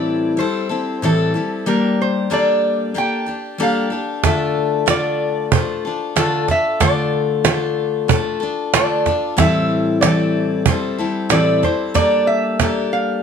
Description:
acoustic folk duo or small band; 93 BPM; 4/4; straight; D minor; A4 = 440 Hz
lap resonator guitar; melody; 0.0-13.2 s; A4 to G5; -21 LUFS; right 1 dB
picked steel-string acoustic guitar; accompaniment; 0.0-13.2 s; A2 to A4; -18 LUFS; left 3 dB
cajon; percussion; 4.2-13.0 s; -17 LUFS; right 7 dB
moderate studio reverb, RT60 0.6 s; -15 LUFS; side -7 dB against mid
0.0-13.2 A section
0.0 Am7; 1.7 Gmadd9; 4.2 Dm; 9.4 Am7; 12.0 Gmadd9
0.39 1.03 | 1.67 2.31 2.96 3.60 | 4.24 4.88 5.53 6.17 | 6.81 7.45 8.10 8.74 | 9.38 10.03 10.67 11.31 | 11.96 12.60

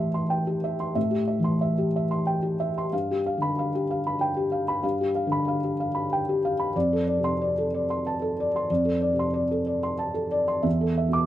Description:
neoclassical minimalist piano; 92 BPM; 3/4; rubato; A4 = 440 Hz
felt-muted upright piano; solo; 0.0-11.3 s; E2 to D6; -23 LUFS; equal
moderate stone room reverb, RT60 1.0 s; band playing live in one room; -23 LUFS; side -13 dB against mid
0.0-11.3 A section
0.0 Am7; 2.9 G7; 6.7 Dm7/F; 10.7 E7sus4
0.29 | 0.96 1.61 2.27 | 2.92 3.57 4.20 | 4.83 5.47 6.10 | 6.75 7.40 8.05 | 8.69 9.33 9.99 | 10.65

